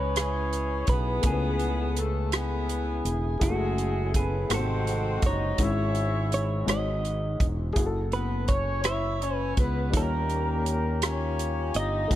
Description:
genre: slow gospel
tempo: 55 BPM (dotted quarters)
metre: 6/8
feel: straight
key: unclear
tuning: A4 = 441 Hz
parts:
  - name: clean electric guitar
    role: melody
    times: 0.0-12.2 s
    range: F#4 to D#5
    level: -32 LUFS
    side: right 3 dB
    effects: none
  - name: dark horn section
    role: melody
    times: 0.0-12.2 s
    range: G#3 to E5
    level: -31 LUFS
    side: left 3 dB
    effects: tape echo
  - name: warm upright piano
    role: accompaniment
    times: 0.0-12.2 s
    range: G#2 to G#5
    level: -34 LUFS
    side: left 3 dB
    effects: none
  - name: fingered electric bass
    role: bass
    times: 0.0-12.2 s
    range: E1 to D#2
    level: -29 LUFS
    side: equal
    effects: none
  - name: warm soul drum kit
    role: drums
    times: 0.2-12.2 s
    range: hi-hat, kick drum, rim click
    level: -28 LUFS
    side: right 1 dB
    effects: none
room: small room ambience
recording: none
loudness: -24 LUFS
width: side -13 dB against mid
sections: 0.0-12.2 A section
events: none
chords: 0.0 C#m9; 1.2 Amaj9/C#; 3.4 F#m9; 4.5 G#7b9; 5.6 C#m/G#; 6.7 G#7sus4; 7.8 F#m7; 9.9 D#9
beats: 0.16 | 1.24 2.33 | 3.41 4.50 | 5.58 6.67 | 7.76 8.84 | 9.93 11.02 | 12.10

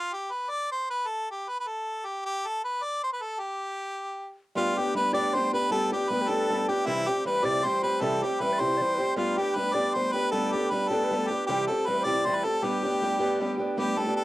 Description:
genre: celtic folk, Celtic jig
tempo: 104 BPM (dotted quarters)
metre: 6/8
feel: straight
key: G mixolydian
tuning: A4 = 440 Hz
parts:
  - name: bright harmonica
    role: melody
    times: 0.0-14.2 s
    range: E4 to D5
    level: -28 LUFS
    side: equal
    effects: cassette tape
  - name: mellow wooden flute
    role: second line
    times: 4.6-13.6 s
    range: E4 to D5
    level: -31 LUFS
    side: left 3 dB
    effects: cassette tape
  - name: picked old ladder-braced acoustic guitar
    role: accompaniment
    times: 4.6-14.2 s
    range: C3 to G4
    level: -28 LUFS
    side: right 1 dB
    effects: cassette tape
room: light reverb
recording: home recording on cassette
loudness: -25 LUFS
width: side -17 dB against mid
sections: 0.0-4.6 A section; 4.6-13.8 A section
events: none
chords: 0.0 N.C.; 4.6 G; 6.9 C; 9.2 G; 11.5 C; 12.6 G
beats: 0.50 | 1.09 1.67 | 2.25 2.83 | 3.41 3.99 | 4.56 5.14 | 5.72 6.29 | 6.87 7.45 | 8.02 8.60 | 9.17 9.75 | 10.32 10.90 | 11.47 12.05 | 12.62 13.20 | 13.77

